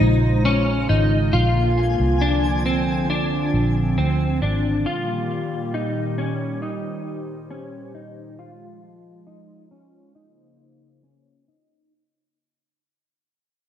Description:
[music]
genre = dream pop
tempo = 68 BPM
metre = 4/4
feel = straight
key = unclear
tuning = A4 = 440 Hz
[part]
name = hollow soft pad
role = sustained chords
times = 0.0-11.9 s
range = Bb2 to C5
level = -26 LUFS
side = right 1 dB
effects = chorus, low-pass filter
[part]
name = clean electric guitar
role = arpeggios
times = 0.0-11.9 s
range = C4 to F4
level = -24 LUFS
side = left 2 dB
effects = ensemble chorus, low-pass filter, ping-pong delay
[part]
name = vintage muted fingered electric bass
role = bass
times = 0.0-4.8 s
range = Ab1 to D2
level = -20 LUFS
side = right 1 dB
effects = none
[part]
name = twinkling granular texture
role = texture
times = 1.3-2.8 s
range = Ab5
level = -34 LUFS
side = right 2 dB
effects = built-in reverb, ping-pong delay
[sound]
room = moderate scoring stage reverb, RT60 1.5 s, digital ambience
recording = none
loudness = -19 LUFS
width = side -10 dB against mid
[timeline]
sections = 0.0-11.9 A section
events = fade-out 0.0-11.9; filter sweep 0.0-11.9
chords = 0.0 Db6; 1.3 Bb; 4.9 Eb/Bb; 8.4 Fm; 10.2 Bbmadd9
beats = 0.45 | 1.33 2.21 3.10 3.98 | 4.86 5.74 6.62 7.51 | 8.39 9.27 10.15 11.04

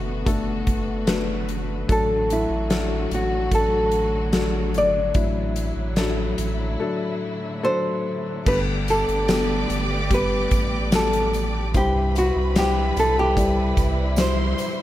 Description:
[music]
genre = pop ballad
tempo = 73 BPM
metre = 4/4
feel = straight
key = G major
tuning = A4 = 440 Hz
[part]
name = nylon-string guitar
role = melody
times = 0.0-14.8 s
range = E4 to D5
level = -23 LUFS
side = equal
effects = none
[part]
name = felt-muted upright piano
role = accompaniment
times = 0.0-14.8 s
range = G2 to D5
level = -27 LUFS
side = left 4 dB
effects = none
[part]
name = rich studio string section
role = sustained chords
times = 0.0-14.8 s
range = C3 to G4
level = -31 LUFS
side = equal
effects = none
[part]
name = warm sub bass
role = bass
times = 0.0-14.5 s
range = F#1 to C2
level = -26 LUFS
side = right 1 dB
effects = none
[part]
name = huge arena drum kit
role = drums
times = 0.3-14.8 s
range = crash cymbal, hi-hat, kick drum, snare drum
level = -25 LUFS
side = equal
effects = none
[part]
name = clear symphonic violin section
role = second line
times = 8.5-14.8 s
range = B4 to D6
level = -31 LUFS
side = right 2 dB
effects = none
[part]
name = tambourine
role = percussion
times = 8.5-14.8 s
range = none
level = -42 LUFS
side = right 7 dB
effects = none
[sound]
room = studio reverb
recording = none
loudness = -19 LUFS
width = side -14 dB against mid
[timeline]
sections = 0.0-8.5 A section; 8.5-14.8 B section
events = none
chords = 0.0 Bm7; 1.9 D; 8.5 Gadd9; 11.7 C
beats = 0.27 1.08 | 1.89 2.70 3.52 4.33 | 5.15 5.97 6.80 7.63 | 8.47 9.29 10.11 10.93 | 11.74 12.56 13.37 14.18

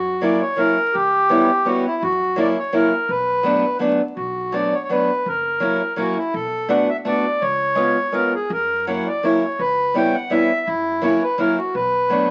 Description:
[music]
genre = musette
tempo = 167 BPM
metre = 3/4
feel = swing 53% on 8ths, rubato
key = B minor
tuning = A4 = 440 Hz
[part]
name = accordion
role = melody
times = 0.0-12.3 s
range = E4 to G5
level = -22 LUFS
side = equal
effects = none
[part]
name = upright bass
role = bass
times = 0.0-12.1 s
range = F#1 to F#2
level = -38 LUFS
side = equal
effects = none
[part]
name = fingerpicked acoustic archtop guitar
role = accompaniment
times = 0.2-12.3 s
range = F#3 to F#4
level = -22 LUFS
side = equal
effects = none
[sound]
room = wet studio reverb, RT60 0.8 s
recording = very old 78 rpm record, vinyl crackle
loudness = -20 LUFS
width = mono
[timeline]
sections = 0.0-4.2 A section; 4.2-12.3 A section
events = none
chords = 0.0 F#7; 0.9 C#m7b5; 2.0 F#7; 3.1 Bm7; 5.3 F#7; 6.3 Bm7; 7.4 C#7; 8.5 F#7; 9.6 C#m7b5; 10.7 F#7; 11.7 Bm7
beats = 0.22 0.58 | 0.95 1.31 1.66 | 2.02 2.38 2.73 | 3.09 3.44 3.81 | 4.17 4.54 4.90 | 5.26 5.62 5.98 | 6.34 6.70 7.06 | 7.42 7.78 8.14 | 8.51 8.87 9.24 | 9.60 9.96 10.32 | 10.68 11.03 11.39 | 11.74 12.10

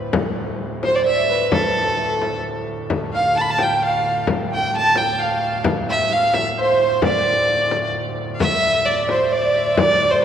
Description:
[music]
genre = medieval dance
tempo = 131 BPM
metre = 3/4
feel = straight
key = D dorian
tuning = A4 = 440 Hz
[part]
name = Celtic harp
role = second line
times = 0.0-10.2 s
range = A4 to A5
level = -23 LUFS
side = right 4 dB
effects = none
[part]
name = pipe organ, foundations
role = drone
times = 0.0-10.2 s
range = D2 to A2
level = -30 LUFS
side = right 2 dB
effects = none
[part]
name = frame drum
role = percussion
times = 0.1-10.0 s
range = none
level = -24 LUFS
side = left 4 dB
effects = none
[part]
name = rich fiddle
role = melody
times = 0.8-10.2 s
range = A4 to B5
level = -19 LUFS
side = right 1 dB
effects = none
[part]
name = clear fiddle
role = second line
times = 0.8-10.2 s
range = A4 to A5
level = -28 LUFS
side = left 5 dB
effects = none
[sound]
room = wet church reverb, RT60 3.6 s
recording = worn, warbling old tape, cassette tape, warbly pitch drift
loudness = -16 LUFS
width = side -9 dB against mid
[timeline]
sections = 0.0-8.4 A section; 8.4-10.2 B section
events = none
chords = none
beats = | 0.13 0.59 1.05 | 1.51 1.97 2.43 | 2.89 3.35 3.81 | 4.27 4.73 5.19 | 5.65 6.11 6.57 | 7.03 7.48 7.94 | 8.40 8.85 9.31 | 9.77 10.22

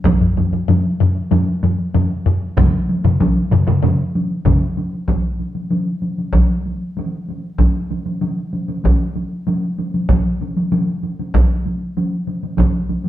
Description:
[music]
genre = japanese traditional, taiko drum ensemble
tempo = 96 BPM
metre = 4/4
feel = straight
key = none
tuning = none
[part]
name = taiko ensemble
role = percussion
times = 0.0-12.7 s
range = none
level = -17 LUFS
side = right 1 dB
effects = none
[part]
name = taiko ensemble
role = percussion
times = 0.1-13.1 s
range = none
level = -19 LUFS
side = equal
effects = none
[part]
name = taiko ensemble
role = percussion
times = 0.1-4.6 s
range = none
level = -17 LUFS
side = left 2 dB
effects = none
[part]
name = solo taiko drums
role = percussion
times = 2.6-4.6 s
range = none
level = -20 LUFS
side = right 1 dB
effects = none
[sound]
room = wet stone room reverb, RT60 1.0 s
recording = band playing live in one room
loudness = -16 LUFS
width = side -12 dB against mid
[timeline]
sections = 0.0-5.1 A section; 5.1-13.1 B section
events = none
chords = none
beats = | 0.04 0.68 1.31 1.94 | 2.57 3.20 3.83 4.46 | 5.09 5.72 6.35 6.97 | 7.60 8.22 8.85 9.47 | 10.10 10.72 11.34 11.96 | 12.59

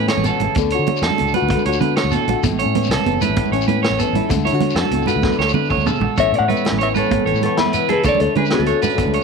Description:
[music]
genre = highlife guitar band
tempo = 128 BPM (dotted quarters)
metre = 12/8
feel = straight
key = A major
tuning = A4 = 435 Hz
[part]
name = nylon-string guitar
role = accompaniment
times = 0.0-9.2 s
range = E2 to F#4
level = -22 LUFS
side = left 12 dB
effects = none
[part]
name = electric guitar at the edge of break-up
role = arpeggios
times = 0.0-9.2 s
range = A4 to C#5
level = -21 LUFS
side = right 12 dB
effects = slapback echo
[part]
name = fingered electric bass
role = bass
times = 0.0-9.2 s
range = F#1 to D3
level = -22 LUFS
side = equal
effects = none
[part]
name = congas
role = percussion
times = 0.0-9.1 s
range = none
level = -23 LUFS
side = right 13 dB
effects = none
[part]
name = vintage drum kit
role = drums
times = 0.1-9.2 s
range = hi-hat, kick drum, snare drum, toms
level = -25 LUFS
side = equal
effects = none
[part]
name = shekere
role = percussion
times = 0.2-9.2 s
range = none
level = -30 LUFS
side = left 7 dB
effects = none
[part]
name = semi-hollow electric guitar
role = melody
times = 6.2-9.2 s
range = E4 to F#5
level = -19 LUFS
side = left 3 dB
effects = phaser
[sound]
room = light reverb, small room ambience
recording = 1960s-style stereo with parts hard left and right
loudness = -15 LUFS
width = side -5 dB against mid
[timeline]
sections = 0.0-6.2 A section; 6.2-9.2 B section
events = drum fill 5.2-6.2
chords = 0.0 Aadd9; 0.6 Dmaj7; 2.4 Aadd9; 4.3 Dmaj7; 6.2 Aadd9; 8.1 Dmaj7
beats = 0.10 | 0.57 1.04 1.50 1.97 | 2.44 2.91 3.37 3.84 | 4.31 4.78 5.24 5.71 | 6.18 6.65 7.11 7.58 | 8.05 8.52 8.99

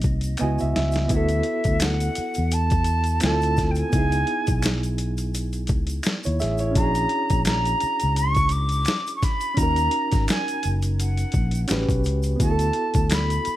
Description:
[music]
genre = R&B, neo-soul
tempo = 85 BPM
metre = 4/4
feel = swing 56% on 16ths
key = unclear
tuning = A4 = 440 Hz
[part]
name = concert flute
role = melody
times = 0.0-13.6 s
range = D#5 to D6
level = -26 LUFS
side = right 1 dB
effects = none
[part]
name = barky reed electric piano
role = accompaniment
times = 0.0-13.6 s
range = A#3 to G#5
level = -28 LUFS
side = right 2 dB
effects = overdrive, fast tremolo
[part]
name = fingered electric bass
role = bass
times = 0.0-13.5 s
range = F#1 to E2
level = -23 LUFS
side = equal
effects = none
[part]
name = dusty soul sampler-style drum kit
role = drums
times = 0.0-13.6 s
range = hi-hat, kick drum, snare drum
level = -24 LUFS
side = equal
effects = overdrive
[part]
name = tube shaker and finger snaps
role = percussion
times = 0.0-13.6 s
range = none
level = -37 LUFS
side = right 1 dB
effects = none
[sound]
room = light reverb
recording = none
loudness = -20 LUFS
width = side -14 dB against mid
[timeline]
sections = 0.0-1.1 A section; 1.1-13.6 B section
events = reed electric piano fill 0.0-1.1; drum fill 0.4-1.1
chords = 0.4 C#m11; 1.1 D6; 3.2 Dm9; 3.9 C#m9; 6.8 A#7alt; 9.6 D#m7; 11.7 A13; 12.4 D6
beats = 0.40 | 1.10 1.81 2.52 3.22 | 3.93 4.63 5.34 6.04 | 6.75 7.46 8.16 8.87 | 9.57 10.28 10.99 11.69 | 12.40 13.10

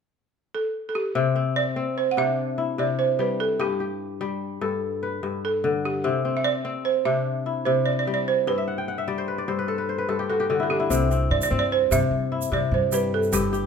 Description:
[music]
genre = west african traditional, West African string and xylophone music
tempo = 99 BPM (dotted quarters)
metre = 12/8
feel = straight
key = C lydian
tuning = A4 = 440 Hz
[part]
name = balafon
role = melody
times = 0.5-13.7 s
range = G4 to F#5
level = -24 LUFS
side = right 6 dB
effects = none
[part]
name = kora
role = arpeggios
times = 1.2-13.7 s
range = G2 to G5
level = -25 LUFS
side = left 5 dB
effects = none
[part]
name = upright bass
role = bass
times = 10.9-13.7 s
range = G1 to G2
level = -27 LUFS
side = equal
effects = none
[part]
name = egg shaker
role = percussion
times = 10.9-13.6 s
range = none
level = -32 LUFS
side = right 8 dB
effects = none
[sound]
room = moderate recital hall reverb, RT60 1.4 s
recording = minimal, uncompressed stereo recording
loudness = -22 LUFS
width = side -6 dB against mid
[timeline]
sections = 0.0-1.2 A section; 1.2-10.9 B section; 10.9-13.7 B section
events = kora fill 8.6-10.9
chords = 0.0 N.C.; 1.2 C; 3.6 G; 6.0 C; 8.5 G; 10.9 C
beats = 0.54 | 1.16 1.77 2.38 2.99 | 3.60 4.21 4.82 5.43 | 6.04 6.65 7.26 7.87 | 8.47 9.08 9.69 10.30 | 10.90 11.51 12.12 12.72 | 13.33

